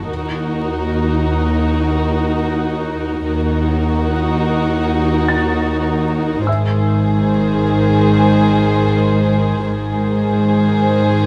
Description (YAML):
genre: cinematic, suspense film score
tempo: 75 BPM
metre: 4/4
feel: straight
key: unclear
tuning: A4 = 441 Hz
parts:
  - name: dark studio violin section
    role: melody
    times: 0.0-11.3 s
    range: A#4 to B#4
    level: -27 LUFS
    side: equal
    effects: none
  - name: warm chamber violin section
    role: second line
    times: 0.0-11.3 s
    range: F#4 to G#4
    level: -25 LUFS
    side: equal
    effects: none
  - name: dark chamber viola section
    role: accompaniment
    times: 0.0-11.3 s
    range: D#3 to D#4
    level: -22 LUFS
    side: equal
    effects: none
  - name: dark chamber cello section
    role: bass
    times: 0.0-11.3 s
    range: D#2 to G#2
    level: -22 LUFS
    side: equal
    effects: none
  - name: dark chamber double bass section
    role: bass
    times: 0.0-11.3 s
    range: G#1 to D#2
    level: -22 LUFS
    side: equal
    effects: none
  - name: felt-muted upright piano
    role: texture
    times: 0.0-11.3 s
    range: E5 to A6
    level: -28 LUFS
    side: equal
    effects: none
room: moderate recital hall reverb, RT60 1.5 s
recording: vinyl crackle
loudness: -16 LUFS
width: mono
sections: 0.0-11.3 A section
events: none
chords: 0.1 D#m; 6.5 G#